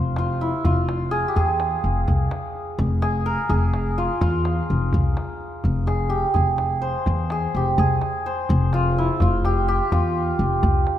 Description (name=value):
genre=Persian modal ensemble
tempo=84 BPM (dotted quarters)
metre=6/8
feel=straight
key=F avaz esfahan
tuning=A4 = 440 Hz
part: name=santur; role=melody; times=0.0-11.0 s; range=E4 to C5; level=-24 LUFS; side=right 1 dB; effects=none
part: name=upright bass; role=bass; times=0.0-10.8 s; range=F1 to E2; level=-22 LUFS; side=left 1 dB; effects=none
part: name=tombak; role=percussion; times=0.0-11.0 s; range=none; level=-26 LUFS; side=equal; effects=none
room=moderate scoring stage reverb, RT60 2.1 s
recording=none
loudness=-19 LUFS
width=side -11 dB against mid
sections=0.0-11.0 A section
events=none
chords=none